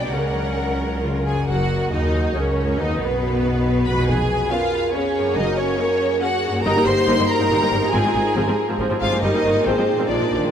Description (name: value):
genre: classical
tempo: 139 BPM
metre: 3/4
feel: rubato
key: F# major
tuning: A4 = 440 Hz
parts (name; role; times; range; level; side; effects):
- warm symphonic violin section; melody; 0.0-10.5 s; B4 to C6; -25 LUFS; left 1 dB; none
- rich symphonic violin section; second line; 0.0-10.5 s; B3 to D5; -26 LUFS; right 2 dB; none
- rich symphonic viola section; accompaniment; 0.0-10.5 s; C3 to B4; -27 LUFS; left 2 dB; none
- concert harp; arpeggios; 0.0-10.5 s; E#2 to C5; -27 LUFS; left 1 dB; none
- rich symphonic cello section; bass; 0.0-10.5 s; C#2 to C#3; -28 LUFS; equal; none
- rich symphonic double bass section; bass; 0.0-10.4 s; E#1 to D#2; -26 LUFS; equal; none
- dark French horn section; sustained chords; 1.5-10.5 s; Eb4 to C5; -23 LUFS; right 1 dB; stereo widening
room: wet huge ambient reverb, RT60 8.3 s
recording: in a vast, echoing space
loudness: -17 LUFS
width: side -8 dB against mid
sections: 0.0-1.5 A section; 1.5-10.5 B section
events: none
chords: 0.1 F#/C#; 1.0 C#; 1.5 F#; 2.8 G#m7; 4.1 C#7/E#; 5.4 F#; 6.6 Eb/G; 7.9 Fm/Ab; 9.2 Eb/G; 9.7 Fm/Ab